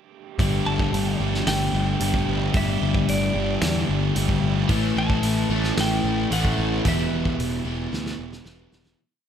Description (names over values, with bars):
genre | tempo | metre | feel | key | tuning
rock, shoegaze and dream pop | 112 BPM | 4/4 | straight | G lydian | A4 = 438 Hz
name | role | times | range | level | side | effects
fuzz guitar | riff | 0.4-9.0 s | E2 to A3 | -26 LUFS | left 10 dB | distortion, lush chorus
overdriven electric guitar | riff | 0.4-9.0 s | E2 to G4 | -28 LUFS | right 12 dB | reverse reverb
fuzz picked electric bass | bass | 0.4-8.9 s | E1 to E2 | -25 LUFS | equal | overdrive
loose indie drum kit | drums | 0.4-9.0 s | hi-hat, kick drum, snare drum | -27 LUFS | equal | none
clean electric guitar | melody | 0.7-8.4 s | D5 to A5 | -30 LUFS | equal | spring reverb, digital delay
overdriven electric guitar | riff | 4.7-9.0 s | E2 to A3 | -31 LUFS | right 2 dB | none
room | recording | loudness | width
light reverb, studio reverb | none | -20 LUFS | side -8 dB against mid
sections
0.4-9.0 verse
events
fade-out 6.9-9.0; drum fill 7.9-9.0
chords
0.4 Gsus2; 4.7 A; 6.9 Em